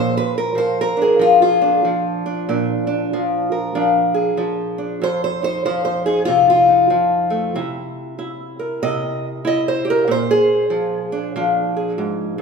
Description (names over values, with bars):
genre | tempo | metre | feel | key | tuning
acoustic country blues, solo or duo | 94 BPM | 4/4 | swing 63% on 8ths | unclear | A4 = 440 Hz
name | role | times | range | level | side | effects
fingerpicked old ladder-braced acoustic guitar | solo | 0.0-12.4 s | F2 to Eb5 | -16 LUFS | equal | none
room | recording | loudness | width
wet scoring stage reverb, RT60 1.6 s | recorded in a church or concert hall | -16 LUFS | side -5 dB against mid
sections
0.0-12.4 A section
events
none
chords
0.0 Bb7; 5.0 F7(no3); 7.6 C7; 10.1 Bb7